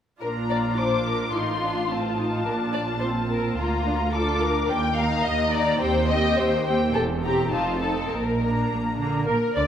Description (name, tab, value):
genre	quick classical-period movement for string orchestra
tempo	106 BPM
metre	2/4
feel	straight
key	Bb major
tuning	A4 = 440 Hz
part	muted studio violin section	melody	0.2-9.7 s	Bb4 to D6	-29 LUFS	left 4 dB	none
part	muted symphonic violin section	second line	0.2-9.7 s	F4 to G5	-26 LUFS	left 2 dB	none
part	muted symphonic viola section	accompaniment	0.2-9.7 s	Bb3 to D5	-29 LUFS	right 1 dB	none
part	muted symphonic cello section	bass	0.2-9.7 s	D2 to D3	-28 LUFS	right 2 dB	none
part	muted symphonic double bass section	bass	0.2-9.7 s	E1 to Eb2	-29 LUFS	right 2 dB	none
room	moderate scoring stage reverb, RT60 1.5 s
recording	none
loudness	-21 LUFS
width	side -9 dB against mid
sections	0.2-9.3 A section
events	none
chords	0.2 Bb; 1.3 F7/A; 2.5 Bb; 3.6 Bb/D; 4.7 Eb5; 5.8 Cm/Eb; 6.9 C7/E; 7.5 F7; 8.1 Bb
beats	| 0.22 0.78 | 1.34 1.91 | 2.47 3.03 | 3.58 4.14 | 4.70 5.26 | 5.82 6.38 | 6.95 7.52 | 8.10 8.69 | 9.27